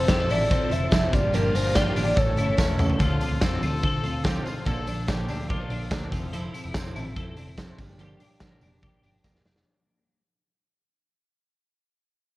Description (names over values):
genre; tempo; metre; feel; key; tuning
jangly indie pop; 144 BPM; 4/4; straight; unclear; A4 = 440 Hz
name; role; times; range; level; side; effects
warbly nostalgic lead; melody; 0.0-2.8 s; Bb4 to E5; -27 LUFS; equal; chorus, analog delay
bright trumpet; second line; 0.0-6.3 s; C4 to A4; -35 LUFS; left 4 dB; none
picked steel-string acoustic guitar; accompaniment; 0.0-9.7 s; G2 to A4; -32 LUFS; right 3 dB; none
phased string machine; sustained chords; 0.0-3.0 s; E3 to A4; -38 LUFS; left 1 dB; none
twelve-string electric guitar; arpeggios; 0.0-10.2 s; G2 to A4; -33 LUFS; left 3 dB; ensemble chorus
vintage muted fingered electric bass; bass; 0.0-9.6 s; E1 to D3; -30 LUFS; equal; none
big rock drum kit; drums; 0.1-9.7 s; hi-hat, kick drum, snare drum, toms; -26 LUFS; equal; none
tambourine; percussion; 0.1-9.5 s; none; -47 LUFS; right 4 dB; none
room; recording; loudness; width
little or no reverb; worn, warbling old tape, cassette tape, warbly pitch drift; -22 LUFS; side -18 dB against mid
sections
0.0-3.0 A section; 3.0-9.7 B section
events
drum fill 2.6-3.0, 9.2-9.7; fade-out 3.0-9.7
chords
0.0 Fmaj7; 1.1 Gm7; 2.2 A; 3.0 Dm7; 4.7 Bbmaj7; 6.1 Fmaj7; 7.8 Gm7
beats
0.09 0.51 0.92 | 1.34 1.75 2.17 2.58 | 3.00 3.42 3.83 4.25 | 4.66 5.08 5.50 5.91 | 6.33 6.74 7.16 7.58 | 7.99 8.41 8.83 9.24